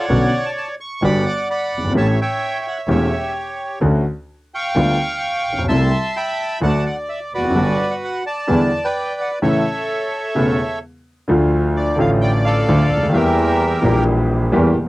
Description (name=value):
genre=tango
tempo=129 BPM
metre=4/4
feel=rubato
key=D minor from 11.3 s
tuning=A4 = 440 Hz
part: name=bandoneon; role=melody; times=0.0-14.0 s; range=F#4 to D6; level=-20 LUFS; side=right 1 dB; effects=cassette tape
part: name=warm grand piano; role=accompaniment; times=0.1-14.9 s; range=E1 to G4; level=-17 LUFS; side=left 1 dB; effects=none
part: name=clear double bass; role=bass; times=0.1-14.9 s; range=E1 to E2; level=-21 LUFS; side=right 1 dB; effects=none
room=moderate booth ambience, RT60 0.2 s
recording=home recording on cassette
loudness=-16 LUFS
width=side -18 dB against mid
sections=0.0-11.3 A section; 11.3-14.9 B section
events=none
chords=0.1 Bmadd9; 1.0 Gmaj7; 2.0 A7; 3.8 Dmaj7; 4.8 G7/D; 5.7 C6; 6.6 D; 7.6 Gmaj7; 8.5 Em7; 9.4 A; 11.3 Dm; 13.2 Edim